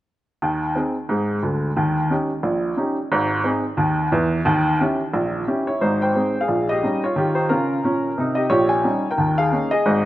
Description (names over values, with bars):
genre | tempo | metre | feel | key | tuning
jazz, stride piano | 178 BPM | 4/4 | swing 59% on 8ths | Ab major | A4 = 440 Hz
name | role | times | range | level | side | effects
clear upright piano | solo | 0.4-10.1 s | Ab1 to Ab5 | -18 LUFS | equal | none
room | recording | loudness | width
moderate lush hall reverb, RT60 3.1 s | rough home demo mix | -18 LUFS | side -14 dB against mid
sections
0.4-5.8 A section; 5.8-10.1 B section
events
none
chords
0.4 Ab/Eb; 1.8 Eb7; 3.1 Ab; 4.5 Eb7b9; 5.8 Ab; 6.5 Eb7/Bb; 7.2 Eb9; 8.5 Eb7/Bb; 9.2 Eb5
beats
| 0.42 0.76 1.10 1.43 | 1.77 2.11 2.44 2.78 | 3.12 3.46 3.79 4.13 | 4.47 4.80 5.14 5.48 | 5.81 6.15 6.49 6.82 | 7.16 7.50 7.83 8.17 | 8.50 8.84 9.18 9.51 | 9.85